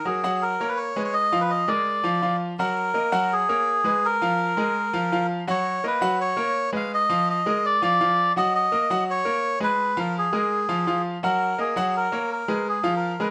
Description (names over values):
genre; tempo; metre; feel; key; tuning
latin; 167 BPM; 4/4; straight; Eb minor; A4 = 440 Hz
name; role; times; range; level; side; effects
melodica; melody; 0.0-13.3 s; Ab4 to F5; -25 LUFS; equal; plate reverb
bright baby grand piano; accompaniment; 0.1-13.3 s; F3 to Gb5; -28 LUFS; equal; none
room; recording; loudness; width
moderate studio ambience, RT60 0.5 s; none; -23 LUFS; mono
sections
0.0-2.6 A section; 2.6-13.3 A section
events
none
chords
0.4 Gb; 1.1 Fdim; 1.9 Bb7; 2.6 Ebm; 3.3 Gb; 4.0 Fdim; 4.8 Bb5; 5.5 Ebm; 6.2 Gb; 6.9 Fm7b5; 7.6 Bb7; 8.4 Ebm; 9.1 Gb; 9.8 Fdim; 10.5 Bb5; 11.2 Ebm; 11.9 Gb; 12.7 Fdim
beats
0.06 0.42 0.78 | 1.15 1.51 1.87 2.23 | 2.59 2.95 3.31 3.68 | 4.04 4.40 4.76 5.12 | 5.48 5.84 6.20 6.55 | 6.92 7.27 7.63 7.99 | 8.35 8.71 9.07 9.43 | 9.79 10.14 10.50 10.86 | 11.22 11.58 11.94 12.29 | 12.65 13.01